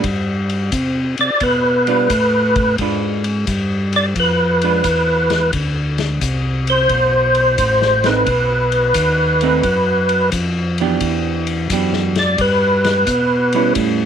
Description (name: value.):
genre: soul jazz organ trio.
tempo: 88 BPM.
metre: 4/4.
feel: swing 67% on 8ths.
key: unclear.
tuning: A4 = 439 Hz.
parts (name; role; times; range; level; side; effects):
archtop guitar, miked and amplified; accompaniment; 0.0-14.1 s; E3 to B4; -20 LUFS; right 12 dB; none.
tonewheel organ; bass; 0.0-14.1 s; A1 to C3; -19 LUFS; equal; stopped rotary speaker.
vintage drum kit; drums; 0.0-14.0 s; hi-hat, kick drum, ride cymbal, snare drum; -23 LUFS; left 5 dB; none.
percussive tonewheel organ; melody; 1.2-13.7 s; B4 to D5; -15 LUFS; equal; slow rotary speaker, chorus vibrato.
room: small room reverb.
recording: 1960s-style stereo.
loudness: -14 LUFS.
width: side -8 dB against mid.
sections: 0.0-14.1 A section.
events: none.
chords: 0.0 G; 2.8 G#dim7; 5.5 D5; 8.3 B; 11.0 Em7.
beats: | 0.05 0.74 1.42 2.11 | 2.80 3.48 4.17 4.85 | 5.54 6.22 6.91 7.59 | 8.28 8.96 9.65 10.34 | 11.02 11.71 12.39 13.08 | 13.76.